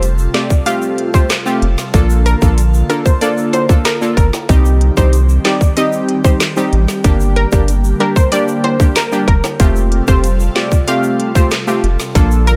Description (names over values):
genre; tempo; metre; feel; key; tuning
dancehall; 94 BPM; 4/4; straight; unclear; A4 = 440 Hz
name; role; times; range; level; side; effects
analog pluck; melody; 0.0-12.6 s; Bb4 to F5; -22 LUFS; equal; chorus, tape echo
synth brass stab; accompaniment; 0.0-12.6 s; G3 to A4; -20 LUFS; equal; chorus, sidechain pumping
airy breathy pad; sustained chords; 0.0-12.6 s; C3 to A4; -26 LUFS; equal; chorus, phaser, sidechain pumping
round analog bass; bass; 0.0-12.6 s; F1 to C2; -15 LUFS; equal; none
island pop drum kit; drums; 0.0-12.6 s; handclaps, hi-hat, kick drum, snare drum; -16 LUFS; equal; none
tube shaker and timbales; percussion; 0.0-12.6 s; none; -31 LUFS; equal; none
room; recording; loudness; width
digital ambience; none; -13 LUFS; mono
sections
0.0-12.6 A section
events
none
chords
0.0 Fadd9; 1.9 Bbmaj7; 4.5 Cm; 7.0 Gm; 9.6 Fadd9